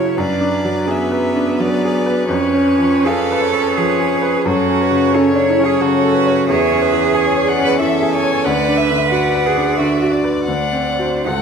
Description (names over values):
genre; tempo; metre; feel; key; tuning
classical, slow romantic movement for piano quartet; 73-93 BPM; 3/4; rubato; unclear; A4 = 440 Hz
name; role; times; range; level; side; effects
rich violin; melody; 0.0-11.4 s; B4 to G#5; -23 LUFS; left 7 dB; none
clear cello; second line; 0.0-11.4 s; B3 to B4; -18 LUFS; right 6 dB; none
warm violin; second line; 0.0-11.4 s; A4 to F#5; -23 LUFS; left 3 dB; none
bright grand piano; accompaniment; 0.0-11.4 s; C#2 to C#5; -17 LUFS; equal; none
room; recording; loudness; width
moderate scoring stage reverb, RT60 1.6 s; none; -13 LUFS; side -6 dB against mid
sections
0.0-11.4 A section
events
none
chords
0.2 G#m7b5/F#; 2.3 C#7/E#; 4.5 F#m; 6.5 C#m/E; 8.5 Bm/D; 10.5 D7